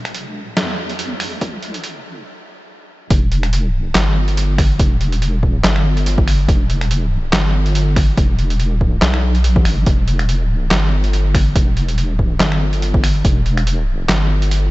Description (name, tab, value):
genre	deep dubstep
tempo	142 BPM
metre	4/4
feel	swing 55% on 16ths, half-time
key	E minor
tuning	A4 = 444 Hz
part	deep soft wobble bass	bass	0.0-14.7 s	E1 to E2	-16 LUFS	equal	chorus
part	trip hop sampler-style drum kit	drums	0.1-14.6 s	finger snaps, handclaps, hi-hat, snare drum	-21 LUFS	equal	none
part	electronic kick drum	drums	1.4-13.3 s	none	-15 LUFS	equal	none
room	little or no reverb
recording	high-pass filter, nothing above 7.9 kHz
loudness	-14 LUFS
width	side -19 dB against mid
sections	0.0-3.1 A section; 3.1-14.7 B section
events	build-up 0.0-3.1; stop 2.3-3.1; drop 3.1-14.7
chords	none